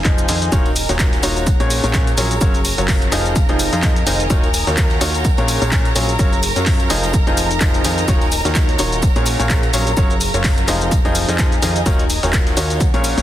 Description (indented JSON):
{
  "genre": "piano house",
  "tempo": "127 BPM",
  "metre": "4/4",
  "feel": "swing 56% on 16ths",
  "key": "Eb dorian",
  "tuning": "A4 = 436 Hz",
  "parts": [
    { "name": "rich studio violin section", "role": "sustained chords", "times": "0.0-13.2 s", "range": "Ab4 to Bb5", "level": "-26 LUFS", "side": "right 2 dB", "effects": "sidechain pumping" },
    { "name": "plucky analog bass", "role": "bass", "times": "0.0-13.2 s", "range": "Eb1 to Gb2", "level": "-22 LUFS", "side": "equal", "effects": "sidechain pumping" },
    { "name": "punchy analog drum machine", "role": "drums", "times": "0.0-13.2 s", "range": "handclaps, hi-hat, shaker", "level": "-22 LUFS", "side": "left 1 dB", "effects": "none" },
    { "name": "airy breathy pad", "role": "texture", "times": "0.0-13.2 s", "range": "Gb3 to Bb5", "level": "-26 LUFS", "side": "equal", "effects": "chorus, phaser, sidechain pumping" },
    { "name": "bright upright piano", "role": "riff", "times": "0.1-13.2 s", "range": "Bb2 to Eb5", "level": "-21 LUFS", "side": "left 1 dB", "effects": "sidechain pumping, tape echo" },
    { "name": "breakbeat sampler-style drum kit", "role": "drums", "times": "0.1-13.2 s", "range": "hi-hat, shaker, snare drum", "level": "-30 LUFS", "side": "right 1 dB", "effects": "none" },
    { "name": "electronic kick drum", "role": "drums", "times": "0.1-12.9 s", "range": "none", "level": "-17 LUFS", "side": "equal", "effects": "none" },
    { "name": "tambourine", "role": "percussion", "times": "0.5-13.2 s", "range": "none", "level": "-32 LUFS", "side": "equal", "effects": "none" }
  ],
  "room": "light reverb",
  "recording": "dense, heavily limited modern master",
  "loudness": "-14 LUFS",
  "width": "side -12 dB against mid",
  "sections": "0.0-13.2 A section",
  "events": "none",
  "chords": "0.0 Fm7; 0.5 Ebm9; 2.4 Gbmaj7; 3.1 Fm7; 4.3 Ebm9; 5.2 Bbm7; 6.2 Gbmaj7; 6.9 Fm7; 8.1 Ebm9; 10.0 Gbmaj7; 10.7 Fm7; 11.9 Ebm9"
}